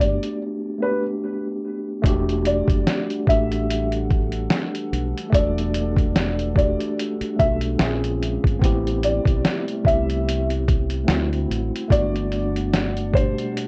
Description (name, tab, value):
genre	lo-fi hip hop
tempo	73 BPM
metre	4/4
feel	swing 56% on 16ths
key	unclear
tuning	A4 = 440 Hz
part	felt-muted upright piano	melody	0.0-13.5 s	B4 to E5	-27 LUFS	equal	low-pass filter
part	mellow tine electric piano	accompaniment	0.0-13.7 s	B2 to A4	-28 LUFS	equal	low-pass filter
part	deep dub fingered electric bass	bass	0.0-13.3 s	E1 to D2	-28 LUFS	equal	none
part	lo-fi sampler-style drum kit	drums	0.0-13.7 s	hi-hat, kick drum, snare drum	-24 LUFS	equal	vintage 12-bit sampler grit
part	warbly tape-like pad	sustained chords	2.0-13.7 s	C3 to F#5	-38 LUFS	equal	chorus, built-in reverb, low-pass filter
room	light reverb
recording	worn, warbling old tape, cassette tape, warbly pitch drift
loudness	-22 LUFS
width	mono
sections	0.0-2.0 A section; 2.0-13.7 B section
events	break 0.4-2.0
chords	0.0 Gmaj7; 2.0 Em11; 7.8 Bbm9; 8.6 Am9; 11.1 D9; 11.9 Gmaj7